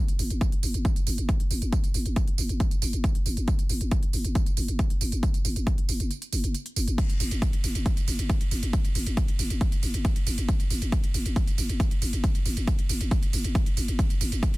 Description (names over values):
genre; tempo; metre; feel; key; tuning
driving peak-time techno; 137 BPM; 4/4; straight; unclear; A4 = 440 Hz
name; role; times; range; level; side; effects
techno drum kit; drums; 0.1-14.6 s; crash cymbal, hi-hat, ride cymbal, tambourine; -34 LUFS; right 5 dB; overdrive
growling 808-style bass; bass; 0.2-14.4 s; F#1; -28 LUFS; equal; overdrive, sidechain pumping, low-pass filter
electronic kick drum; drums; 0.4-14.5 s; none; -24 LUFS; equal; overdrive
room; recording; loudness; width
little or no reverb; none; -24 LUFS; side -20 dB against mid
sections
0.0-14.6 A section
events
break 6.1-7.0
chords
none